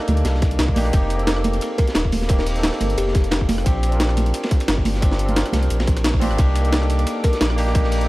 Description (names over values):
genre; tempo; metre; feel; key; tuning
liquid drum and bass; 176 BPM; 4/4; swing 54% on 16ths; C dorian; A4 = 441 Hz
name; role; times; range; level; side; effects
barky tine electric piano; accompaniment; 0.0-8.1 s; Bb3 to Bb4; -25 LUFS; equal; dub echo
jungle sampler-style drum kit; drums; 0.0-8.1 s; hi-hat, rim click, snare drum; -25 LUFS; equal; none
sub bass with octave; bass; 0.1-8.1 s; Eb1 to D2; -21 LUFS; equal; none
crunchy breakbeat drum kit; drums; 0.1-8.0 s; hi-hat, ride cymbal, snare drum; -30 LUFS; equal; high-pass filter on cymbals, high-pass filter on hats, high-pass filter on snare, high-pass filter on room
congas; percussion; 0.1-6.3 s; none; -27 LUFS; right 2 dB; none
electronic kick drum; drums; 0.4-7.8 s; none; -18 LUFS; equal; overdrive
bell-like FM electric piano; melody; 1.8-3.2, 7.2-7.4 s; G4 to Bb4; -30 LUFS; left 2 dB; chorus, dub echo
airy breathy pad; sustained chords; 6.4-8.1 s; Bb3 to D6; -30 LUFS; left 2 dB; chorus, sidechain pumping
room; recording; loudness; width
studio reverb; dark, warm production; -17 LUFS; side -19 dB against mid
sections
0.0-6.4 A section; 6.4-8.1 A section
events
drop 0.0-6.4, 6.4-8.1; band accent 6.0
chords
0.0 Cm9; 0.9 F7sus4; 3.7 Bb69; 6.4 Cm9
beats
0.25 0.59 | 0.93 1.27 1.61 1.96 | 2.30 2.64 2.98 3.32 | 3.66 4.00 4.34 4.68 | 5.02 5.36 5.71 6.05 | 6.39 6.73 7.07 7.41 | 7.75